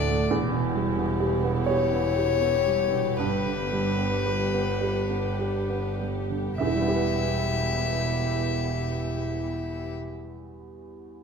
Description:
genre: neoclassical piano and strings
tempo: 32-46 BPM (dotted quarters)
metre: 6/8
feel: rubato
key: E dorian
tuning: A4 = 438 Hz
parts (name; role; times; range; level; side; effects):
- rich violin; melody; 0.0-9.9 s; B4 to E5; -29 LUFS; left 7 dB; none
- dark upright piano; accompaniment; 0.0-11.2 s; D2 to F#5; -28 LUFS; right 3 dB; none
- warm chamber string section; sustained chords; 0.0-9.9 s; A3 to A4; -34 LUFS; left 2 dB; none
- dark double bass; bass; 0.0-9.9 s; E1 to D2; -30 LUFS; right 1 dB; none
room: moderate recital hall reverb, RT60 1.4 s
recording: recorded in a church or concert hall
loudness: -24 LUFS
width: side -6 dB against mid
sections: 0.0-6.6 A section; 6.6-10.2 B section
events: slowing down 0.0-6.6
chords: 0.3 Em; 3.2 G; 6.6 Em

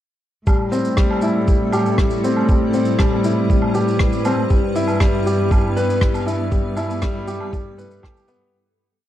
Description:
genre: piano and strings electronica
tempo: 119 BPM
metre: 4/4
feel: straight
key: A minor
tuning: A4 = 441 Hz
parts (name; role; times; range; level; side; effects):
- granular cloud pad; sustained chords; 1.4-8.5 s; G3 to B4; -26 LUFS; right 1 dB; built-in reverb
- warm upright piano; riff; 0.5-8.6 s; G3 to B4; -20 LUFS; left 2 dB; tape echo
- dark symphonic cello section; bass; 0.5-8.5 s; G2 to A2; -23 LUFS; right 1 dB; sidechain pumping
- electronic kick drum; drums; 0.5-8.1 s; none; -18 LUFS; equal; none
- shaker, woodblock and rim click; drums; 0.5-8.4 s; none; -28 LUFS; right 1 dB; none
room: light reverb, small room ambience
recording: dark, warm production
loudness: -16 LUFS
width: side -12 dB against mid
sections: 0.5-8.5 drop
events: drop 0.5-8.5; fade-out 5.8-8.5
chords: 0.5 Am7; 4.5 Em/G

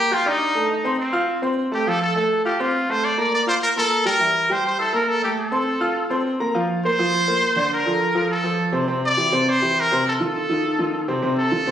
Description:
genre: latin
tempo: 205 BPM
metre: 4/4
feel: straight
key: unclear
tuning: A4 = 440 Hz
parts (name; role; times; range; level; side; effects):
- bright trumpet; melody; 0.0-11.7 s; C4 to D5; -20 LUFS; equal; none
- warm baby grand piano; accompaniment; 0.0-11.7 s; C3 to G6; -22 LUFS; equal; none
room: moderate studio reverb, RT60 0.9 s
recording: recorded on a phone in the room, studio reverb, compression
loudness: -18 LUFS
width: side -10 dB against mid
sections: 0.0-6.6 A section; 6.6-11.7 B section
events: none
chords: 0.0 Ebmaj7; 0.7 F7; 1.9 F; 3.0 Bb5; 4.2 Gm69/E; 5.4 F; 6.6 Fsus4; 7.7 Bbmaj7; 8.9 C7; 10.1 F7

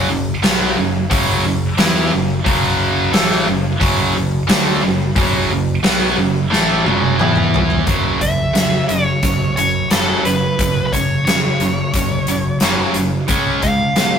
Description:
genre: hard rock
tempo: 89 BPM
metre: 4/4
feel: straight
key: F# minor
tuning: A4 = 440 Hz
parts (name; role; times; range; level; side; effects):
- tight distorted guitar; riff; 0.0-14.2 s; F#2 to E4; -17 LUFS; right 1 dB; distortion
- modern bright picked electric bass; bass; 0.0-14.2 s; F#1 to B2; -23 LUFS; left 1 dB; none
- huge arena drum kit; drums; 0.4-14.1 s; hi-hat, kick drum, snare drum, toms; -18 LUFS; equal; none
- nasal lead guitar with a parked wah; melody; 8.2-14.2 s; A4 to E#5; -19 LUFS; equal; overdrive
room: moderate stone room reverb, RT60 1.0 s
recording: rough rehearsal-room recording, tube saturation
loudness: -14 LUFS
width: side -7 dB against mid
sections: 0.0-7.9 A section; 7.9-14.2 B section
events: drum fill 6.5-7.9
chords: 0.0 F#m; 7.2 E5; 7.9 F#5; 13.3 C#

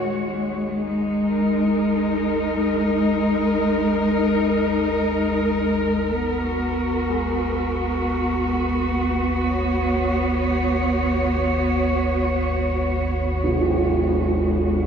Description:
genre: dark ambient drone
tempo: free time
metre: none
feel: none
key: G# minor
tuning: A4 = 439 Hz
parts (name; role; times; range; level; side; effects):
- dark symphonic cello section; sustained chords; 0.0-14.9 s; G#3 to C#5; -20 LUFS; equal; shimmer reverb
- warm concert grand piano; arpeggios; 0.0-13.5 s; A#2 to G#3; -41 LUFS; equal; none
- deep rumbling drone; drone; 0.0-14.9 s; G#1 to D#2; -27 LUFS; equal; built-in reverb, wide subtle chorus
- tam-tam; percussion; 13.4-13.6 s; none; -20 LUFS; right 2 dB; low-pass filter on cymbals
room: wet echo chamber reverb, RT60 2.1 s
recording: echo-heavy mix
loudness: -19 LUFS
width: side -7 dB against mid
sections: 0.0-14.9 A section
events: fade-in on synth drone 0.0-14.9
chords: 0.0 G#5; 6.2 G#m

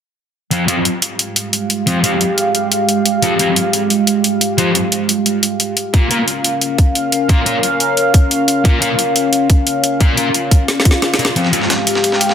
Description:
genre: dark technical drum and bass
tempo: 177 BPM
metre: 4/4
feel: straight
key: F minor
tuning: A4 = 441 Hz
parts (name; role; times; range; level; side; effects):
- sweeping resonant pad; sustained chords; 0.5-12.3 s; Ab3 to F5; -16 LUFS; right 1 dB; chorus, sidechain pumping
- thick fuzz guitar; stabs; 0.5-11.6 s; F3 to Bb4; -19 LUFS; left 1 dB; distortion, low-pass filter, dub echo
- drum and bass drum kit; drums; 0.5-12.3 s; hi-hat, snare drum; -16 LUFS; equal; overdrive, small room ambience
- electronic kick drum; drums; 5.9-10.9 s; none; -11 LUFS; equal; overdrive, small room ambience
- swell and riser; sound effects; 10.9-12.3 s; none; -27 LUFS; right 2 dB; none
- breakbeat sampler-style drum kit; drums; 11.4-12.3 s; ride cymbal, snare drum; -19 LUFS; equal; high-pass filter on cymbals, small room ambience, high-pass filter on snare
room: moderate digital room reverb, RT60 1.1 s, digital ambience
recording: dense, heavily limited modern master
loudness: -12 LUFS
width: side -8 dB against mid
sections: 0.5-11.4 A section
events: drum fill 10.7-11.4; swell 10.9-11.4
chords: 0.5 Fmadd9; 5.9 Bbm; 11.4 Fmadd9

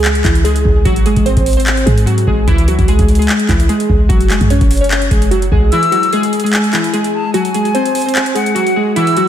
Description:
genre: hip hop, trap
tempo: 148 BPM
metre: 4/4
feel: half-time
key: unclear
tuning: A4 = 445 Hz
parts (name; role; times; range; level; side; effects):
- glassy digital keys; melody; 0.0-9.3 s; E3 to C#5; -14 LUFS; equal; chorus, low-pass filter, ping-pong delay
- clean 808-style bass; bass; 0.0-5.7 s; F#1 to G#2; -14 LUFS; equal; none
- booming analog drum machine; drums; 0.0-9.3 s; handclaps, hi-hat, kick drum; -15 LUFS; equal; none
- breathy silver concert flute; second line; 5.7-9.3 s; F#5 to E6; -17 LUFS; left 2 dB; ping-pong delay
room: moderate lush hall reverb, RT60 1.7 s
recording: dreamy mix soaked in reverb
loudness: -10 LUFS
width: side -10 dB against mid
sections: 0.0-9.3 A section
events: kick muted 5.7-9.3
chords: 0.0 C#m; 0.9 G#; 2.5 C#m; 4.1 F#sus2; 5.7 Eadd9; 7.3 G#

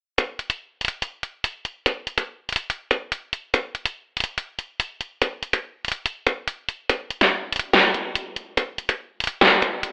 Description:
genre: dubstep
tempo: 143 BPM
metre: 4/4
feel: half-time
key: none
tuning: none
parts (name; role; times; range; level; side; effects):
- dubstep drum kit; drums; 0.2-9.9 s; hi-hat, snare drum; -19 LUFS; equal; small room ambience
- electronic kick drum; drums; 0.2-9.7 s; none; -20 LUFS; equal; high-pass filter on kick, small room ambience
room: moderate plate reverb, RT60 1.8 s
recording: telephone sound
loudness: -21 LUFS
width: side -28 dB against mid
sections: 0.2-9.9 A section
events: none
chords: none

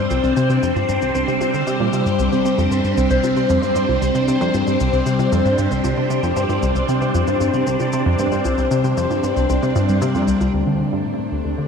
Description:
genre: ambient, sequencer-driven space music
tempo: 115 BPM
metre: 4/4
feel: straight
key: unclear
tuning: A4 = 441 Hz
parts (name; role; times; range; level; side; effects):
- phased string machine; sustained chords; 0.0-11.7 s; G3 to D5; -21 LUFS; equal; ensemble chorus, phaser, shimmer reverb
- concert harp; arpeggios; 0.0-11.7 s; G3 to C5; -22 LUFS; left 3 dB; auto-pan, tape echo, shimmer reverb
- tight sequenced synth; riff; 0.0-11.7 s; C2 to D3; -20 LUFS; right 1 dB; chorus, tape echo, shimmer reverb
- bongos and shaker; percussion; 0.1-10.5 s; none; -35 LUFS; left 2 dB; tape echo
- bubbling stepped-filter texture; texture; 11.6-11.7 s; none; barely audible; none; none
room: moderate plate reverb, RT60 2.5 s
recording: cassette tape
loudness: -16 LUFS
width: side -6 dB against mid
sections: 0.0-10.5 A section; 10.5-11.7 B section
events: none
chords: 0.0 Csus2; 10.5 Dm

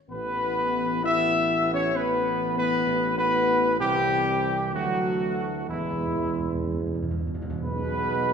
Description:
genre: classical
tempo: 64 BPM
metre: 4/4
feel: straight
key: E major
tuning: A4 = 440 Hz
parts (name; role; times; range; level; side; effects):
- mellow trumpet section; melody; 0.1-8.3 s; E4 to E5; -25 LUFS; equal; none
- clear trombone section; sustained chords; 0.1-8.3 s; B2 to C4; -33 LUFS; right 2 dB; none
- dark French horn section; sustained chords; 0.1-8.3 s; E3 to G#4; -30 LUFS; left 6 dB; none
- mellow tuba; bass; 0.1-8.3 s; A1 to E2; -31 LUFS; right 4 dB; none
- timpani; percussion; 5.7-7.6 s; E2; -32 LUFS; right 1 dB; none
room: wet scoring stage reverb, RT60 1.6 s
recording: minimal, uncompressed stereo recording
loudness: -23 LUFS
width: side -6 dB against mid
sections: 0.0-7.6 A section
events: timpani fill 5.7-7.6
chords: 0.1 Asus2; 3.8 C; 5.7 E; 7.6 E/B (rootless)

